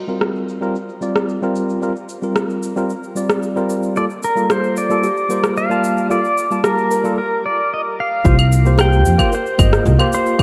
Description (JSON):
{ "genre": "sunset chillout", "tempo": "112 BPM", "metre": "4/4", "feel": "straight", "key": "unclear", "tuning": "A4 = 437 Hz", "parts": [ { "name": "tine electric piano", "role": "accompaniment", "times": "0.1-10.4 s", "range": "G3 to A5", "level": "-22 LUFS", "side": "equal", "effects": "vintage 12-bit sampler grit, digital delay, shimmer reverb" }, { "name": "electronic shaker, rim click and claves", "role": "drums", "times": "0.1-10.4 s", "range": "none", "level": "-23 LUFS", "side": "equal", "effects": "overdrive, low-pass filter on perc, low-pass filter on snare, low-pass filter on cymbals, low-pass filter on room" }, { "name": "pedal steel guitar", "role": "melody", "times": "4.0-10.4 s", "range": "Bb4 to G5", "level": "-21 LUFS", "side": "equal", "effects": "delay, shimmer reverb" }, { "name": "kalimba", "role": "arpeggios", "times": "4.5-10.4 s", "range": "F4 to Bb4", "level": "-29 LUFS", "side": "equal", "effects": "digital delay, shimmer reverb" }, { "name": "electronic kick drum", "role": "drums", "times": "8.2-10.4 s", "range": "none", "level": "-17 LUFS", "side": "equal", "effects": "overdrive" }, { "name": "upright bass", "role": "bass", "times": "8.3-9.9 s", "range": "G1 to F2", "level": "-16 LUFS", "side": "equal", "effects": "none" } ], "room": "moderate lush hall reverb, RT60 2.5 s", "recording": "none", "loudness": "-17 LUFS", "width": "mono", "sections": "0.0-8.3 A section; 8.3-10.4 B section", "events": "break 7.2-8.3", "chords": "0.0 C7sus4; 4.0 Gm9; 8.3 C7sus4", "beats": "0.21 0.75 1.29 | 1.82 2.36 2.89 3.43 | 3.96 4.50 5.04 5.57 | 6.11 6.64 7.18 7.71 | 8.25 8.79 9.32 9.86 | 10.39" }